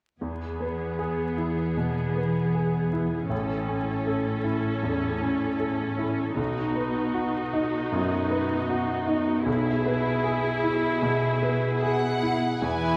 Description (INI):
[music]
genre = cinematic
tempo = 78 BPM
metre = 4/4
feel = rubato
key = E major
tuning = A4 = 440 Hz
[part]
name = bright grand piano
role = accompaniment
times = 0.2-13.0 s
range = A1 to A4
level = -31 LUFS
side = equal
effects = none
[part]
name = rich studio viola section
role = accompaniment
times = 0.2-13.0 s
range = B3 to A4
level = -31 LUFS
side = equal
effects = none
[part]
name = warm studio cello section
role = bass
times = 0.2-13.0 s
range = E2 to B2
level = -32 LUFS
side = equal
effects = none
[part]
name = rich studio violin section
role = melody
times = 11.8-13.0 s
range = F#5 to G#5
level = -32 LUFS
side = equal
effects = none
[part]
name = rich studio violin section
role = second line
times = 12.6-13.0 s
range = E4 to B4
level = -30 LUFS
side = equal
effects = none
[sound]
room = wet recital hall reverb, RT60 1.6 s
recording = heard from further back in the room, vinyl crackle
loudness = -26 LUFS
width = mono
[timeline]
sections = 0.2-12.6 A section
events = none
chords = 0.2 E; 3.3 A; 6.4 B; 9.5 E/B